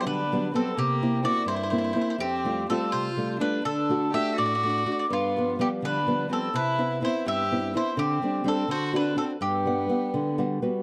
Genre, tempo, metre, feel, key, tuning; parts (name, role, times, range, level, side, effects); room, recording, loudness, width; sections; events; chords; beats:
italian folk, Italian serenade; 84 BPM (dotted quarters); 6/8; straight; G major; A4 = 440 Hz
mandolin; melody; 0.0-10.4 s; F4 to E5; -31 LUFS; equal; plate reverb, analog delay
clear violin; second line; 0.0-10.4 s; Bb3 to G4; -33 LUFS; equal
nylon-string guitar; accompaniment; 0.0-10.8 s; F2 to F#5; -30 LUFS; equal
moderate studio reverb, RT60 0.5 s; dark, warm production; -26 LUFS; mono
0.0-10.8 A section
nylon-string guitar fill 10.1-10.8
0.0 Gmaj7; 0.8 C7; 2.2 Fadd9; 3.6 D; 5.1 G7; 6.5 Cmaj7; 8.0 D7sus4; 8.7 D7; 9.4 Gmaj7
0.07 | 0.78 1.49 | 2.21 2.92 | 3.65 4.37 | 5.09 5.82 | 6.54 7.26 | 7.98 8.69 | 9.41 10.13